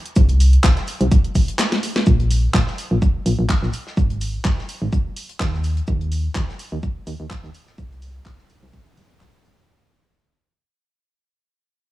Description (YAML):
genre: piano house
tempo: 126 BPM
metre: 4/4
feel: swing 54% on 16ths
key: unclear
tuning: A4 = 440 Hz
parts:
  - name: house drum kit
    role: drums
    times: 0.1-9.6 s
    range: handclaps, hi-hat, snare drum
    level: -25 LUFS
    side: equal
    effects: none
  - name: solid FM bass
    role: bass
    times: 0.2-9.6 s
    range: G1 to Eb2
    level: -18 LUFS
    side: equal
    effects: tube saturation, sidechain pumping
  - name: electronic kick drum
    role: drums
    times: 0.2-9.3 s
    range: none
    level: -18 LUFS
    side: equal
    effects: none
  - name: modern studio drum kit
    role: drums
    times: 0.2-9.7 s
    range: hi-hat, shaker, snare drum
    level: -36 LUFS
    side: left 2 dB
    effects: sidechain pumping on hats, high-pass filter on hats, high-pass filter on snare, sidechain pumping on perc, high-pass filter on perc, high-pass filter on room
room: little or no reverb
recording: dry, gritty hardware recording, transformer saturation, cassette tape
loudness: -17 LUFS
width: side -16 dB against mid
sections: 0.0-2.1 A section; 2.1-9.7 B section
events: drop 0.0-2.1; break 1.6-2.1; drum fill 1.6-2.1; fade-out 2.1-9.7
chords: none